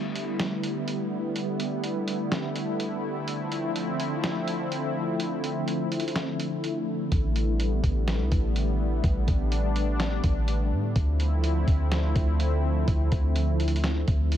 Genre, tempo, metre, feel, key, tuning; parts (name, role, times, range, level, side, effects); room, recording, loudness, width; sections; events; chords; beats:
hip hop, atmospheric cloud-rap; 125 BPM; 4/4; half-time; D dorian; A4 = 440 Hz
warm analog pad; sustained chords; 0.0-14.4 s; D3 to E4; -28 LUFS; left 1 dB; chorus, sidechain pumping
lo-fi sampler-style drum kit; drums; 0.2-14.4 s; hi-hat, kick drum, snare drum; -29 LUFS; equal
warm 808-style bass; bass; 7.1-14.4 s; A1 to A2; -25 LUFS; equal
little or no reverb; -24 LUFS; side -11 dB against mid
0.0-14.4 A section
break 0.0-7.1
0.0 A9sus4; 3.3 Dm9; 7.1 A9sus4; 11.0 Dm9
0.40 0.88 | 1.36 1.84 2.32 2.80 | 3.28 3.76 4.24 4.72 | 5.20 5.68 6.16 6.64 | 7.12 7.60 8.08 8.56 | 9.04 9.52 10.00 10.48 | 10.96 11.44 11.92 12.40 | 12.88 13.36 13.84 14.32